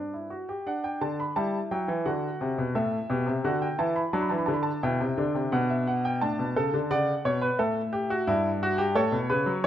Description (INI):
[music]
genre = classical, baroque-style 3-part fugue for grand piano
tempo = 87 BPM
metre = 4/4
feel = straight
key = G major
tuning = A4 = 442 Hz
[part]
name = warm grand piano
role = solo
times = 0.0-9.7 s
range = G2 to B5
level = -25 LUFS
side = equal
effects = none
[sound]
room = moderate recital hall reverb, RT60 1.4 s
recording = close, detailed microphones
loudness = -25 LUFS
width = side -11 dB against mid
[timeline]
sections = 0.7-9.7 A section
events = none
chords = 0.0 G5; 0.7 G5/D; 2.1 D; 4.8 G/B; 6.2 D/A; 7.6 A5; 9.0 A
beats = | 0.66 1.36 2.06 2.76 | 3.46 4.15 4.84 5.54 | 6.22 6.91 7.59 8.28 | 8.97 9.64